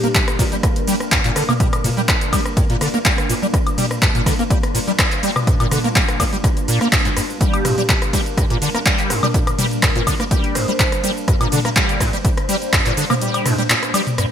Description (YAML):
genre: acid house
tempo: 124 BPM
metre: 4/4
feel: straight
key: G minor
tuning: A4 = 440 Hz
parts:
  - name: warbly tape-like pad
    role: sustained chords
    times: 0.0-14.3 s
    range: G3 to C5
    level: -26 LUFS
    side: left 1 dB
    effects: chorus, built-in reverb, phaser, sidechain pumping
  - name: liquid acid bass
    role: riff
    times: 0.0-14.3 s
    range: G2 to Bb3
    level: -21 LUFS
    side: equal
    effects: tube saturation, ensemble chorus, ping-pong delay
  - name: booming analog drum machine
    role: drums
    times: 0.0-14.3 s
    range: handclaps, hi-hat, ride cymbal, rim click, shaker, snare drum, toms, woodblock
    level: -19 LUFS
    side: left 1 dB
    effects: overdrive, gated reverb
  - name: electronic kick drum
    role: drums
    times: 0.1-12.8 s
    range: none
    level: -18 LUFS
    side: equal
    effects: none
  - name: vibraphone with hard mallets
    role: melody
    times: 7.5-11.0 s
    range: G4 to C5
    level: -26 LUFS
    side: right 1 dB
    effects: ping-pong delay
room: light reverb, digital ambience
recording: bright 1980s-style digital production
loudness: -15 LUFS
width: side -9 dB against mid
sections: 0.0-14.3 A section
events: kick drops out 13.2-14.3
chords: 0.0 Gm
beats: 0.15 0.63 1.12 | 1.60 2.08 2.57 3.05 | 3.54 4.02 4.50 4.99 | 5.47 5.96 6.44 6.92 | 7.41 7.89 8.38 8.86 | 9.34 9.83 10.31 10.79 | 11.28 11.76 12.25 12.73 | 13.21 13.70 14.18